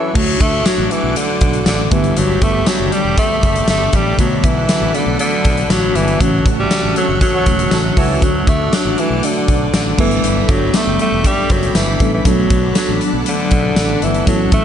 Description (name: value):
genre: 1980s-style pop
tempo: 119 BPM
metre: 4/4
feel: straight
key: D major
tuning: A4 = 439 Hz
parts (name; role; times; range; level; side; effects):
- raspy tenor saxophone; melody; 0.0-14.6 s; D3 to A3; -18 LUFS; equal; shimmer reverb
- FM electric piano with soft pad layer; accompaniment; 0.0-14.6 s; C#3 to B5; -20 LUFS; equal; chorus, shimmer reverb
- lush unison pad; sustained chords; 0.0-14.6 s; A4 to D6; -26 LUFS; equal; chorus, shimmer reverb
- analog synth brass; stabs; 0.0-0.1, 7.0-8.2 s; F#4 to C#5; -28 LUFS; right 2 dB; none
- fingered electric bass; bass; 0.2-14.6 s; E1 to D2; -20 LUFS; equal; none
- huge arena drum kit; drums; 0.2-14.6 s; crash cymbal, hi-hat, kick drum, snare drum, tambourine; -17 LUFS; equal; none
room: light reverb, small room ambience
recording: nothing above 10.4 kHz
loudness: -12 LUFS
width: side -9 dB against mid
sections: 0.2-14.6 A section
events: break 0.0; FM electric piano fill 0.0; band accent 6.2-8.2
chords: 0.2 D; 1.9 Gadd9; 4.2 Bm7; 6.2 A6; 8.2 D; 10.0 Gadd9; 12.3 Bm7